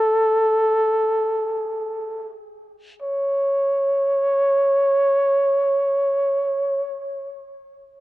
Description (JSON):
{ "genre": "pop", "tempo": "free time", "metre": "none", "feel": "none", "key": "A major", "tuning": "A4 = 440 Hz", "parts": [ { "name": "breathy flugelhorn", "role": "melody", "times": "0.0-7.2 s", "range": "A4 to C#5", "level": "-19 LUFS", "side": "equal", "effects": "tape echo" } ], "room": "moderate studio reverb, RT60 0.6 s", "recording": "dry, close 1970s-style studio recording", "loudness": "-18 LUFS", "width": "side -16 dB against mid", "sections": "0.0-3.0 A section; 3.0-7.8 B section", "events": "slowing down 0.0-3.0", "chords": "none" }